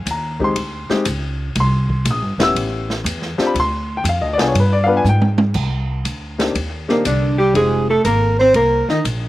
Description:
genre	jazz, small-group swing and bop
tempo	120 BPM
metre	4/4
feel	swing 68% on 8ths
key	C minor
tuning	A4 = 439 Hz
part	warm baby grand piano	accompaniment	0.0-7.9 s	Ab3 to E6	-19 LUFS	left 2 dB	none
part	upright bass	bass	0.0-9.3 s	Eb1 to Ab2	-20 LUFS	equal	none
part	open jazz drum kit	drums	0.1-9.2 s	crash cymbal, hi-hat, kick drum, ride cymbal, snare drum, toms	-24 LUFS	right 1 dB	none
part	vintage hollow-body jazz guitar	melody	6.9-9.0 s	Bb2 to C5	-17 LUFS	left 1 dB	none
part	breathy alto saxophone	second line	6.9-9.0 s	Bb3 to C5	-18 LUFS	right 2 dB	slapback echo
room	little or no reverb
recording	recorded outdoors, with no room sound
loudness	-15 LUFS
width	side -16 dB against mid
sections	0.0-5.5 A section; 5.5-9.3 B section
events	drum fill 5.0-5.5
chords	0.0 Fm7 (rootless); 1.6 Cm7; 2.6 A7; 3.6 Dm7b5; 4.5 G7b9; 5.5 Cm7; 7.5 Fm7

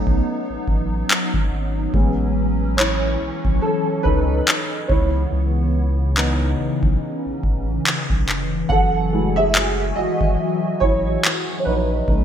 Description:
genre	contemporary R&B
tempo	71 BPM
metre	4/4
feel	swing 58% on 16ths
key	F# dorian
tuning	A4 = 436 Hz
part	dark concert grand piano	accompaniment	0.0-12.2 s	E3 to F#5	-23 LUFS	right 2 dB	ensemble chorus
part	hollow soft pad	sustained chords	0.0-12.2 s	C#3 to G#5	-25 LUFS	left 1 dB	ensemble chorus
part	saturated sub bass	bass	0.1-12.2 s	E#1 to C#2	-22 LUFS	equal	none
part	booming analog drum machine	drums	0.1-12.2 s	handclaps, kick drum	-20 LUFS	equal	gated reverb
room	light reverb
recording	bright 1980s-style digital production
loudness	-17 LUFS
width	side -9 dB against mid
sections	0.0-12.2 A section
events	grand piano solo 0.0-12.2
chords	0.0 B7; 1.9 Amaj7; 4.9 C#m7; 8.7 F#m9

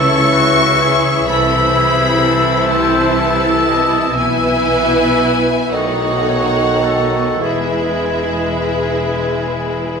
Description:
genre	classical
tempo	34-43 BPM (dotted quarters)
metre	6/8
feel	rubato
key	E major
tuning	A4 = 440 Hz
part	warm symphonic violin section	melody	0.0-10.0 s	E5 to C#6	-20 LUFS	left 4 dB	none
part	mellow clarinet	second line	0.0-10.0 s	G#4 to C#5	-25 LUFS	equal	none
part	silver concert flute	second line	0.0-10.0 s	B5 to E6	-21 LUFS	left 1 dB	none
part	warm oboe	second line	0.0-10.0 s	F#4 to E5	-23 LUFS	right 1 dB	none
part	warm symphonic violin section	second line	0.0-10.0 s	A3 to E5	-23 LUFS	left 2 dB	none
part	clear bassoon	accompaniment	0.0-10.0 s	D#3 to E3	-21 LUFS	right 1 dB	none
part	rich symphonic viola section	accompaniment	0.0-10.0 s	E3 to E4	-21 LUFS	right 2 dB	none
part	mellow French horn section	sustained chords	0.0-10.0 s	G#3 to E4	-24 LUFS	left 3 dB	none
part	rich studio double bass section	bass	0.0-10.0 s	E1 to C#2	-24 LUFS	right 1 dB	none
part	warm symphonic cello section	bass	0.0-10.0 s	E2 to C#3	-23 LUFS	right 2 dB	none
room	wet scoring stage reverb, RT60 1.9 s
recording	minimal, uncompressed stereo recording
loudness	-12 LUFS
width	side -5 dB against mid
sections	0.0-10.0 A section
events	none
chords	0.0 A/C#; 1.3 Am/C; 4.2 E/B; 5.7 B9; 7.4 E

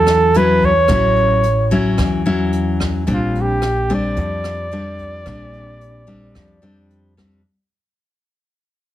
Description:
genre	bossa nova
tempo	110 BPM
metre	4/4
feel	straight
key	unclear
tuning	A4 = 441 Hz
part	warm flugelhorn	melody	0.0-6.9 s	F4 to D5	-17 LUFS	right 2 dB	plate reverb
part	nylon-string guitar	accompaniment	0.0-7.4 s	A2 to E4	-19 LUFS	left 2 dB	none
part	upright bass	bass	0.0-7.4 s	A1 to F2	-22 LUFS	equal	none
part	jazz brush drum kit	drums	0.1-7.3 s	hi-hat, kick drum, rim click	-26 LUFS	right 1 dB	none
room	moderate studio reverb, RT60 0.5 s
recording	heavily compressed radio sound, multiband compression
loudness	-14 LUFS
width	side -13 dB against mid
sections	0.0-7.4 A section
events	fade-out 0.0-7.4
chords	0.0 A6; 3.1 Bb69

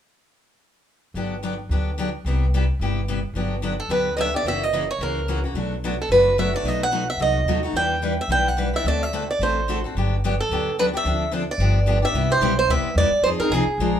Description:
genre	acoustic string swing (jazz manouche)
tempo	218 BPM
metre	4/4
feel	swing 57% on 8ths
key	G major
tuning	A4 = 439 Hz
part	upright bass	bass	1.1-14.0 s	F#1 to F2	-24 LUFS	equal	none
part	picked steel-string acoustic guitar	accompaniment	1.2-14.0 s	B2 to B4	-25 LUFS	left 2 dB	none
part	picked swing-style acoustic guitar	melody	3.8-14.0 s	Ab4 to G5	-21 LUFS	right 2 dB	none
room	moderate studio reverb, RT60 0.7 s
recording	minimal, uncompressed stereo recording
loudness	-19 LUFS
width	side -9 dB against mid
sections	1.2-3.4 A section; 3.4-12.1 B section; 12.1-14.0 C section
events	none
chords	1.2 Gmaj7; 2.3 Cmaj7; 3.4 Gmaj7; 4.5 F#7; 5.5 Bm7; 6.6 B7; 7.7 Em7; 8.8 D7; 9.9 Gmaj7; 11.0 Dm7; 11.6 G7; 12.1 Cmaj7; 13.2 Fm7

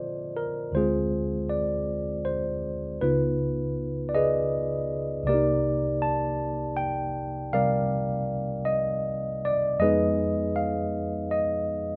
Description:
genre	jazz ballad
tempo	53 BPM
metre	4/4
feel	swing 68% on 8ths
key	unclear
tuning	A4 = 440 Hz
part	tine electric piano	solo	0.0-12.0 s	C2 to A5	-27 LUFS	equal	none
room	moderate studio reverb, RT60 0.9 s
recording	none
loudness	-27 LUFS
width	mono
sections	0.0-12.0 A section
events	none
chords	0.0 Bbmaj9; 0.7 Dm7b5; 3.0 Db9; 5.3 Cm9; 9.8 Fm7b5

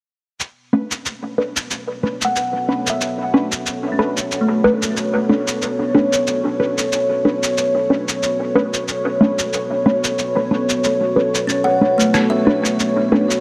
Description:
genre	ambient dub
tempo	92 BPM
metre	4/4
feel	swing 56% on 16ths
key	B minor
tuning	A4 = 440 Hz
part	deep dark ambient pad	sustained chords	2.2-13.4 s	B3 to C#5	-22 LUFS	equal	chorus, built-in reverb
part	electronic cabasa and rim click	drums	0.4-13.4 s	none	-26 LUFS	equal	dub echo
part	filtered dub chord stab	stabs	0.7-13.3 s	A3 to B4	-22 LUFS	equal	phaser, dub echo
part	kalimba	arpeggios	2.2-7.1, 11.5-13.4 s	A3 to F#5	-24 LUFS	equal	low-pass filter, dub echo
room	moderate huge ambient reverb, RT60 6.5 s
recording	none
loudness	-18 LUFS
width	mono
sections	0.4-13.4 A section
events	filter sweep on kalimba 0.4-13.4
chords	0.4 Bm9

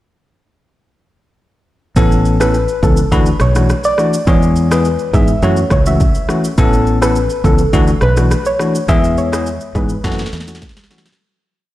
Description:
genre	afrobeats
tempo	104 BPM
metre	4/4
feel	straight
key	A major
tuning	A4 = 440 Hz
part	soft round pluck	melody	2.0-10.9 s	A4 to E5	-19 LUFS	equal	chorus, tape echo
part	barky tine electric piano	accompaniment	2.0-11.1 s	E3 to A4	-17 LUFS	left 2 dB	none
part	fingered electric bass	bass	2.0-10.6 s	A1 to G#2	-15 LUFS	equal	none
part	afro-pop drum kit	drums	2.0-11.3 s	kick drum, rim click, shaker, snare drum	-17 LUFS	equal	none
room	light reverb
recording	played on a big sound system in a bare room, stone room reverb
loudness	-11 LUFS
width	side -15 dB against mid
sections	2.0-11.2 verse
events	fade-out 8.9-11.2; drum fill 10.0-11.2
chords	2.0 Aadd9; 3.1 Dadd9; 4.3 E; 5.4 F#m7; 6.6 Aadd9; 7.7 Dadd9; 8.9 E; 10.0 F#m7

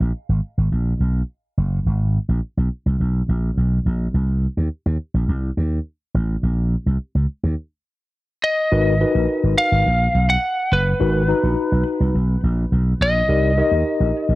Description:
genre	early-eighties boogie funk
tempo	105 BPM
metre	4/4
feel	straight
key	unclear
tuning	A4 = 441 Hz
part	slap bass with an envelope filter	bass	0.0-14.4 s	Gb1 to Eb2	-18 LUFS	equal	none
part	lightly driven lead guitar	melody	8.4-14.4 s	Cb5 to Gb5	-21 LUFS	equal	none
part	mellow tine electric piano	accompaniment	8.7-14.4 s	Eb4 to Bb5	-21 LUFS	left 3 dB	medium stereo tremolo
room	digital ambience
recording	none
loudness	-17 LUFS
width	side -18 dB against mid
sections	0.0-8.7 A section; 8.7-14.4 B section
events	break 7.6-8.7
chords	0.0 Abmadd9; 4.1 Cm; 6.4 Bbmadd9; 8.7 Abm9; 13.3 Cm9

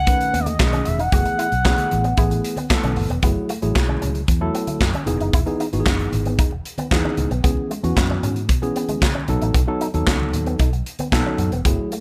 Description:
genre	early-eighties boogie funk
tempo	114 BPM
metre	4/4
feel	straight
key	F# dorian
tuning	A4 = 440 Hz
part	expressive synth lead	melody	0.0-2.7 s	D5 to F#5	-25 LUFS	equal	chorus
part	vintage muted fingered electric bass	bass	0.0-11.8 s	E1 to C#3	-26 LUFS	equal	none
part	tine electric piano	accompaniment	0.1-11.9 s	D#3 to B4	-27 LUFS	equal	none
part	electric guitar with an envelope filter	riff	0.1-12.0 s	G#3 to F#4	-32 LUFS	equal	analog chorus
part	modern studio drum kit	drums	0.1-12.0 s	handclaps, hi-hat, kick drum, snare drum	-23 LUFS	equal	none
part	congas	percussion	0.1-11.8 s	none	-34 LUFS	equal	none
room	small room ambience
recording	none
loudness	-20 LUFS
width	mono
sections	0.0-3.2 A section; 3.2-12.0 B section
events	none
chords	0.0 B13; 1.1 F#m11; 3.2 F#m9; 5.1 Emaj7; 7.4 C#m7; 9.3 B7

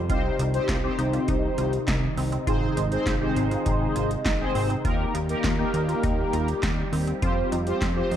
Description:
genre	synth-pop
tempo	101 BPM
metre	4/4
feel	straight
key	unclear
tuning	A4 = 440 Hz
part	phased analog pad	sustained chords	0.0-8.2 s	C3 to G4	-31 LUFS	equal	phaser, chorus
part	resonant blip pluck	arpeggios	0.0-8.2 s	C4 to G4	-34 LUFS	right 2 dB	phaser, digital delay
part	fat analog bass	bass	0.0-8.2 s	Ab1 to F2	-28 LUFS	equal	none
part	mellow synth brass	accompaniment	0.1-8.2 s	Bb3 to C5	-28 LUFS	left 1 dB	chorus, phaser
part	electro analog drum machine	drums	0.1-8.2 s	handclaps, hi-hat, kick drum, snare drum	-28 LUFS	equal	overdrive
room	light reverb, digital ambience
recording	dark, warm production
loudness	-22 LUFS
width	side -10 dB against mid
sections	0.0-8.2 A section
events	none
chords	0.1 Cm; 2.5 Ab; 4.8 Eb; 7.2 Fsus2

